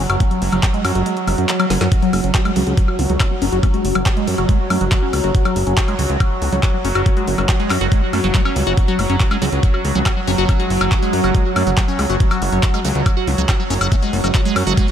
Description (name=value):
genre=psychedelic trance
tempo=140 BPM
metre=4/4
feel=straight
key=F# minor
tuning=A4 = 440 Hz
part: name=bubbling stepped-filter texture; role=sustained chords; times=0.0-14.9 s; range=F#3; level=-21 LUFS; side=right 1 dB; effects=chorus, built-in reverb, sidechain pumping
part: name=liquid acid bass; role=riff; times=0.0-14.9 s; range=E#3 to F#4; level=-22 LUFS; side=moving between left 7 dB and right 5 dB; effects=phaser, auto-pan, sidechain pumping, tape echo
part: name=fat analog bass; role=bass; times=0.0-14.7 s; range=F#1 to F#2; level=-19 LUFS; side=equal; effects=none
part: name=drum and bass drum kit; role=drums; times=0.1-14.9 s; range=handclaps, hi-hat, snare drum, woodblock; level=-24 LUFS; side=left 1 dB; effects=overdrive
part: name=electronic kick drum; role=drums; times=0.2-14.9 s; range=none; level=-16 LUFS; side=equal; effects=overdrive
room=moderate huge ambient reverb, RT60 4.6 s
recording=dreamy mix soaked in reverb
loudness=-14 LUFS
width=side -9 dB against mid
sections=0.0-14.9 A section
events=filter sweep on acid bass 0.0-14.9; kick drops out 1.1-1.9; drum fill 1.7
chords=0.0 F#5